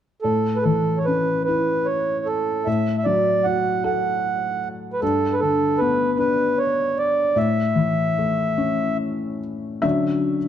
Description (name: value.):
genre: celtic folk, Celtic slow air.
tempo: 50 BPM (dotted quarters).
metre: 6/8.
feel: uneven beats, rubato.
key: A mixolydian.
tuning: A4 = 439 Hz.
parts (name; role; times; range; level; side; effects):
mellow accordion; melody; 0.2-9.0 s; A4 to F#5; -21 LUFS; right 2 dB; slapback echo.
felt-muted upright piano; accompaniment; 0.2-10.5 s; G2 to E5; -22 LUFS; left 3 dB; none.
room: moderate recital hall reverb, RT60 1.6 s.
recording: dark, warm production.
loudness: -19 LUFS.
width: side -10 dB against mid.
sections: 0.2-9.8 A section.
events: none.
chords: 0.2 A; 2.7 D/A (rootless); 5.0 G; 7.4 A; 9.8 Dmaj7.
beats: | 0.23 1.47 | 2.67 3.85 | 5.01 6.18 | 7.36 8.59 | 9.84.